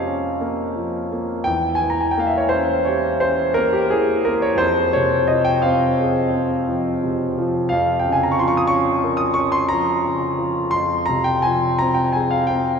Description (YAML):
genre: classical, romantic nocturne for solo piano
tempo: 58 BPM (dotted quarters)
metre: 9/8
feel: rubato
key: F minor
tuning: A4 = 440 Hz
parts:
  - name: warm grand piano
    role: solo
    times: 0.0-12.8 s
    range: E2 to Eb6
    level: -17 LUFS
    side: equal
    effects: none
room: wet cathedral reverb, RT60 4.3 s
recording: dark, warm production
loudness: -17 LUFS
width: side -6 dB against mid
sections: 0.0-12.8 A section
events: none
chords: 0.0 Gm7b5/F; 1.5 Edim7; 4.6 Fm; 7.7 Bbm/F; 10.7 Fm